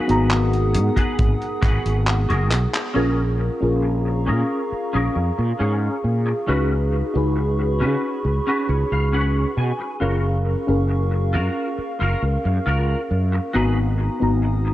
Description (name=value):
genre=vaporwave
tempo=68 BPM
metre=4/4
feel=straight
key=unclear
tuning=A4 = 440 Hz
part: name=mellow FM electric piano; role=accompaniment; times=0.0-14.7 s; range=B3 to A#5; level=-25 LUFS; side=left 2 dB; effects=wide subtle chorus, analog delay
part: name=warbly tape-like pad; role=sustained chords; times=0.0-14.7 s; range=B3 to D#6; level=-28 LUFS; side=right 2 dB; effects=chorus, built-in reverb
part: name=semi-hollow electric guitar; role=riff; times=0.0-14.7 s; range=C#4 to G#5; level=-27 LUFS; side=equal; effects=ensemble chorus, low-pass filter, analog delay
part: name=fretless electric bass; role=bass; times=0.1-14.7 s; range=F#1 to C#3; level=-20 LUFS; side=equal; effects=tube saturation, analog chorus
part: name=detuned 8-bit digital drum machine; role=drums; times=0.1-2.9 s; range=handclaps, hi-hat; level=-26 LUFS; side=equal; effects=overdrive
part: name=kick drum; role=drums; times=1.0-1.8 s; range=none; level=-20 LUFS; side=equal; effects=none
room=light reverb, digital ambience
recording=dark, warm production, cassette tape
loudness=-18 LUFS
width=side -14 dB against mid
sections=0.0-3.0 A section; 3.0-14.7 B section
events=filter sweep on clean electric guitar 0.0-3.0, 3.0-14.7; drum fill 2.5-3.0; band accent 2.7-3.2; clean electric guitar fill 8.2-10.0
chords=0.0 G#m7; 3.0 A#m7; 6.5 C#7sus4; 10.0 F#maj7; 13.5 G#m7